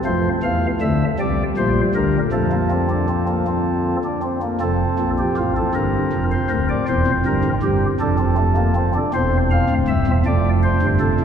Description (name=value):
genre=classical, baroque-style 3-part fugue for pipe organ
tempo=53 BPM (dotted quarters)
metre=6/8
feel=straight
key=F major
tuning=A4 = 440 Hz
part: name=pipe organ, flutes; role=solo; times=0.1-11.2 s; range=C1 to F5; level=-16 LUFS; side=equal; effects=none
room=wet cathedral reverb, RT60 5.8 s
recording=recorded in a church or concert hall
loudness=-17 LUFS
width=side -8 dB against mid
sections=0.1-4.6 A section; 4.6-11.2 B section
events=none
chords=0.1 F; 1.2 C5; 2.3 F; 5.7 Gm7; 6.9 C7/E; 8.0 F; 9.1 C/E; 10.3 Dm7/F